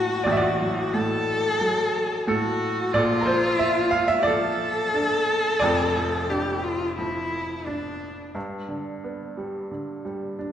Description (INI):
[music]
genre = acoustic folk-pop ballad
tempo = 89 BPM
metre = 4/4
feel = straight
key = unclear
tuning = A4 = 440 Hz
[part]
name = clear upright piano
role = melody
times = 0.0-10.5 s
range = F1 to A5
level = -24 LUFS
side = right 1 dB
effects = none
[part]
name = dark cello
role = second line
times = 0.0-8.4 s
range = D4 to A4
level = -24 LUFS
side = left 2 dB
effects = none
[sound]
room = wet recital hall reverb, RT60 1.6 s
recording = recorded in a church or concert hall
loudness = -22 LUFS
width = side -9 dB against mid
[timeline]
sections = 0.0-8.4 A section; 8.4-10.5 B section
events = none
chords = 0.0 D/A; 2.9 Bbmaj7; 8.4 G